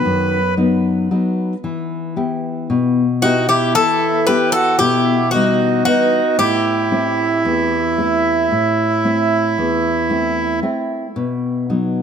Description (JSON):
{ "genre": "greek folk, Greek bouzouki band", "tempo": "113 BPM (eighths)", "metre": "9/8", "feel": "straight", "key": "E harmonic minor", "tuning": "A4 = 440 Hz", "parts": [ { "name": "Greek bouzouki", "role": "melody", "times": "0.0-10.6 s", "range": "F#4 to B4", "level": "-18 LUFS", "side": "left 2 dB", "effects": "none" }, { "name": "accordion", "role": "second line", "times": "0.0-10.6 s", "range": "D#4 to B4", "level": "-18 LUFS", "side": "right 4 dB", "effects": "none" }, { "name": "nylon-string guitar", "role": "accompaniment", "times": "0.0-12.0 s", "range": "E2 to B4", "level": "-18 LUFS", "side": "left 3 dB", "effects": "none" } ], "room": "moderate plate reverb, RT60 3.3 s", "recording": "none", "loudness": "-14 LUFS", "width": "side -7 dB against mid", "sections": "0.0-1.6 A section; 1.6-12.0 B section", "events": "none", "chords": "0.0 B; 1.6 Em; 6.4 Am; 11.2 B" }